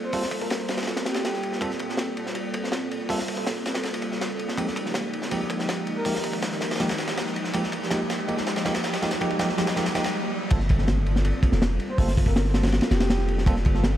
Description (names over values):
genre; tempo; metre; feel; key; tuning
drum and bass, jungle; 162 BPM; 4/4; straight; unclear; A4 = 439 Hz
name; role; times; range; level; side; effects
breathy flute-like synth lead; melody; 0.0-1.6, 6.0-6.2, 11.9-13.4 s; G4 to C5; -34 LUFS; left 1 dB; chorus, dub echo
airy breathy pad; sustained chords; 0.0-14.0 s; F3 to A4; -30 LUFS; equal; chorus
riser and impact; sound effects; 0.5-12.0 s; none; -36 LUFS; right 1 dB; none
bell-like tine electric piano; stabs; 0.1-13.5 s; F3 to A4; -30 LUFS; right 1 dB; vintage 12-bit sampler grit, low-pass filter, dub echo
crunchy breakbeat drum kit; drums; 0.1-13.9 s; crash cymbal, hi-hat, kick drum, ride cymbal, snare drum; -26 LUFS; equal; high-pass filter on kick, high-pass filter on cymbals, high-pass filter on hats, high-pass filter on snare, high-pass filter on room, analog delay
long sustained 808-style bass; bass; 10.5-14.0 s; F1 to G1; -23 LUFS; equal; none
room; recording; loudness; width
moderate echo chamber reverb, RT60 1.8 s, small room ambience; echo-heavy mix, vinyl crackle; -23 LUFS; side -12 dB against mid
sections
0.0-10.5 A section; 10.5-14.0 B section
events
build-up 0.0-10.5; filter sweep on analog synth pad 0.0-10.5; stop 10.1-10.5; drop 10.5-14.0; impact 10.5-12.0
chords
0.0 Gm11; 4.6 Fm11; 10.5 Gm11